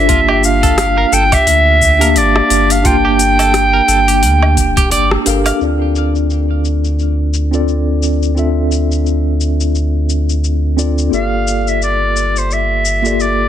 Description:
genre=sunset chillout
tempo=87 BPM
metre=4/4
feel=swing 57% on 16ths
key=G dorian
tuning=A4 = 440 Hz
part: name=mellow soprano saxophone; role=melody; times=0.0-4.9, 11.1-13.5 s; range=C5 to G5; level=-13 LUFS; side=right 2 dB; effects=digital delay
part: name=mellow tine electric piano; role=accompaniment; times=0.0-13.5 s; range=Bb3 to A5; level=-17 LUFS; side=left 2 dB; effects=medium stereo tremolo, auto-pan, low-pass filter, ping-pong delay
part: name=warm sub bass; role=bass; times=0.0-13.5 s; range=D1 to D2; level=-15 LUFS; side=equal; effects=none
part: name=semi-hollow electric guitar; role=arpeggios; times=0.1-5.6 s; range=F4 to F5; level=-21 LUFS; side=right 3 dB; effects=harmonic tremolo, ping-pong delay
part: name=electronic kick drum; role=drums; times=0.1-4.9 s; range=none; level=-16 LUFS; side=equal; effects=none
part: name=smooth R&B drum kit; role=drums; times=0.1-13.4 s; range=cabasa, hi-hat, rim click, woodblock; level=-20 LUFS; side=left 3 dB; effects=overdrive, low-pass filter on hats, low-pass filter on perc, low-pass filter on snare
room=light reverb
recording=dense, heavily limited modern master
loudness=-11 LUFS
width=side -10 dB against mid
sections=0.0-5.6 A section; 5.6-13.5 B section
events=band accent 5.1-5.4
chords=0.1 Gm9; 5.6 Dm7; 11.1 Gm9

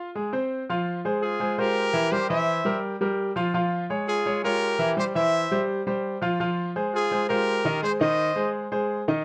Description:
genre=latin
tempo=168 BPM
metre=4/4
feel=straight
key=F minor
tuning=A4 = 440 Hz
part: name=bright concert grand piano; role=accompaniment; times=0.0-9.2 s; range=Eb3 to F5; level=-27 LUFS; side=equal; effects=none
part: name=brilliant trumpet section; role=melody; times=1.2-8.5 s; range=F4 to E5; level=-27 LUFS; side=equal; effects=none
room=light reverb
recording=dry, close 1970s-style studio recording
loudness=-25 LUFS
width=mono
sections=0.7-9.2 A section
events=none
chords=0.0 Fm; 2.1 C7; 3.5 Db; 5.0 C; 6.4 Fm; 7.8 Ab

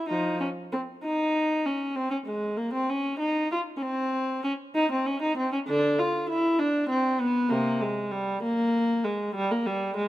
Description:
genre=classical, baroque-style suite movement for unaccompanied viola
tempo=65 BPM (dotted quarters)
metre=12/8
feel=rubato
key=unclear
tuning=A4 = 440 Hz
part: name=dark viola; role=solo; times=0.0-10.1 s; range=C3 to F4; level=-25 LUFS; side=equal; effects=none
room=light reverb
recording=close, detailed microphones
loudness=-25 LUFS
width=side -15 dB against mid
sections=0.0-10.1 A section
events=none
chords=none

